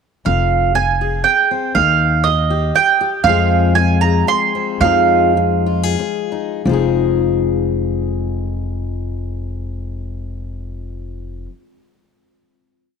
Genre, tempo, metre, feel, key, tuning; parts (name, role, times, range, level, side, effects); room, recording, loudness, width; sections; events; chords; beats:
acoustic folk duo or small band; 85-121 BPM; 3/4; straight; F minor; A4 = 440 Hz
fingerpicked steel-string acoustic guitar; accompaniment; 0.2-11.6 s; F2 to Ab4; -20 LUFS; left 11 dB
mandolin; melody; 0.3-5.9 s; Eb5 to C6; -15 LUFS; right 10 dB
upright bass; bass; 0.3-11.4 s; F1 to F2; -19 LUFS; left 1 dB
moderate plate reverb, RT60 3.5 s; 1960s-style stereo with parts hard left and right; -14 LUFS; side -6 dB against mid
0.3-6.6 A section; 6.6-10.9 final chord
slowing down 3.2-6.6
0.3 Fm; 1.7 Eb; 3.2 Fm; 4.8 Fm7
| 0.26 0.75 1.25 | 1.75 2.24 2.74 | 3.24 3.74 4.25 | 4.79 5.36 5.98 | 6.65 7.36 8.06 | 8.77 9.48 10.19